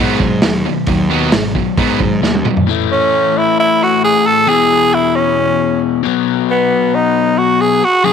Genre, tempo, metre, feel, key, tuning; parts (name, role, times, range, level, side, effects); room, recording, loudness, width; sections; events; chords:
classic rock; 134 BPM; 4/4; straight; A4 = 440 Hz
distorted electric guitar; riff; 0.0-2.7 s; D#3 to B3; -19 LUFS; right 13 dB; overdrive
overdriven electric guitar; riff; 0.0-8.1 s; E2 to B3; -16 LUFS; left 14 dB
fuzz picked electric bass; bass; 0.0-2.4 s; G#1 to G#2; -18 LUFS; right 2 dB; overdrive
vintage drum kit; drums; 0.2-2.7 s; hi-hat, kick drum, snare drum, toms; -17 LUFS; right 2 dB
raspy tenor saxophone; melody; 2.9-8.1 s; B3 to A4; -12 LUFS; right 2 dB
light reverb, studio reverb; 1960s-style stereo with parts hard left and right; -11 LUFS; side -7 dB against mid
0.0-2.7 A section; 2.7-8.1 B section
drum fill 2.2-2.7
0.0 B; 2.7 A; 4.5 E; 6.0 B